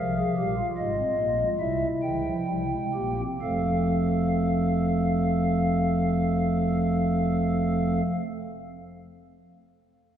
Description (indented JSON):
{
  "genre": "classical, baroque-style 4-part fugue for pipe organ",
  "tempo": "62-77 BPM",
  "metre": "4/4",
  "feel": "straight",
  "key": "unclear",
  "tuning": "A4 = 440 Hz",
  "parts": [
    { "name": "pipe organ, stopped flute", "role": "solo", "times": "0.0-8.0 s", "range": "F1 to G5", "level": "-23 LUFS", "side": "equal", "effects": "none" }
  ],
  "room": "wet church reverb, RT60 3.0 s",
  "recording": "nothing above 10.3 kHz",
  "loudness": "-23 LUFS",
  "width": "side -9 dB against mid",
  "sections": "0.0-3.4 A section; 3.4-7.2 B section",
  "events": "slowing down 0.0-3.4",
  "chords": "0.0 Fm; 1.6 C7; 3.4 F",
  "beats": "0.77 1.60 2.47 | 3.41 4.37 5.33 6.29"
}